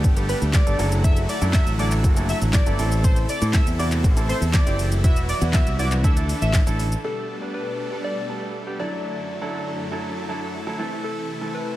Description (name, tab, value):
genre	dance-pop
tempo	120 BPM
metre	4/4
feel	straight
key	G major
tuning	A4 = 436 Hz
part	bright concert grand piano	accompaniment	0.0-11.8 s	E3 to B4	-30 LUFS	right 2 dB	sidechain pumping
part	supersaw chords	sustained chords	0.0-11.8 s	F#2 to A4	-30 LUFS	equal	sidechain pumping
part	modern bright fingered electric bass	bass	0.0-6.9 s	E1 to A2	-22 LUFS	equal	sidechain pumping
part	deep house drum kit	drums	0.0-7.0 s	handclaps, hi-hat, kick drum, shaker, snare drum	-20 LUFS	equal	none
part	octave-doubled lead	melody	0.3-6.6 s	B4 to E5	-29 LUFS	equal	chorus, sidechain pumping, dub echo
part	soft struck synth lead	melody	7.0-11.8 s	A4 to D5	-32 LUFS	left 2 dB	chorus, dub echo
room	digital ambience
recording	none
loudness	-19 LUFS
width	side -15 dB against mid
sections	0.0-7.0 A section; 7.0-11.8 B section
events	drop 0.0-7.0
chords	0.0 Gadd9; 0.8 Dadd9/F#; 2.8 Am; 5.0 Esus2; 6.0 Dsus2; 7.0 Gadd9; 8.8 Dadd9/F#; 10.8 Am